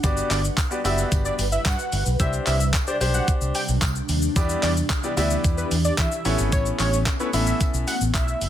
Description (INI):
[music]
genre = dance-pop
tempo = 111 BPM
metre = 4/4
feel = straight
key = unclear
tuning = A4 = 440 Hz
[part]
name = clear grand piano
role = accompaniment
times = 0.0-7.9 s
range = B3 to E5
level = -27 LUFS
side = left 1 dB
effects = sidechain pumping
[part]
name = ethereal airy pad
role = sustained chords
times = 0.0-8.5 s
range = C3 to F#5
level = -30 LUFS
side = equal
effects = ensemble chorus, built-in reverb, phaser, sidechain pumping
[part]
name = vintage muted fingered electric bass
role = bass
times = 0.0-8.5 s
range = F#1 to E3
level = -24 LUFS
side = equal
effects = sidechain pumping
[part]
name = clean 12-bit digital drum machine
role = drums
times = 0.0-8.5 s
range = handclaps, hi-hat, kick drum, shaker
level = -24 LUFS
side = equal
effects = none
[part]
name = tambourine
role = percussion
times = 0.0-8.3 s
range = none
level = -40 LUFS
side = right 5 dB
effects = none
[part]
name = fat analog lead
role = melody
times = 0.3-8.5 s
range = B4 to G5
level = -29 LUFS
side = equal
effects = sidechain pumping, ping-pong delay
[sound]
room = little or no reverb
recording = none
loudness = -20 LUFS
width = side -11 dB against mid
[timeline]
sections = 0.0-8.5 A section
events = none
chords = 0.0 Gmaj7; 2.2 Csus2; 4.4 Em7; 6.3 Aadd9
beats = | 0.04 0.58 1.12 1.66 | 2.20 2.74 3.28 3.82 | 4.36 4.90 5.44 5.98 | 6.52 7.06 7.60 8.14